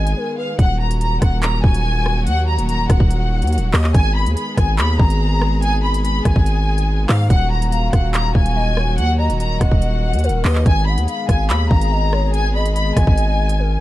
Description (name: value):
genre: hip hop, drill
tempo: 143 BPM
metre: 4/4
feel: half-time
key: Eb minor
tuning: A4 = 440 Hz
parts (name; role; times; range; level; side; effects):
- warm studio violin section; melody; 0.0-13.8 s; Eb5 to Cb6; -23 LUFS; left 1 dB; none
- gliding portamento lead; second line; 0.0-0.6, 7.5-13.8 s; Bb4 to Gb5; -27 LUFS; left 3 dB; chorus, digital delay
- rich chamber string section; sustained chords; 0.0-13.8 s; Eb3 to Ab4; -26 LUFS; equal; none
- distorted 808-style bass; bass; 0.0-13.8 s; Eb1 to Ab2; -17 LUFS; equal; distortion
- drill drum kit; drums; 0.1-13.6 s; handclaps, hi-hat, kick drum, rim click; -17 LUFS; equal; none
room: little or no reverb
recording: dark, warm production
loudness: -15 LUFS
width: side -15 dB against mid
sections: 0.6-13.8 A section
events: break 0.2-0.6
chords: 0.0 Abm; 0.6 Ebm; 3.9 Abm; 7.3 Ebm; 10.7 Abm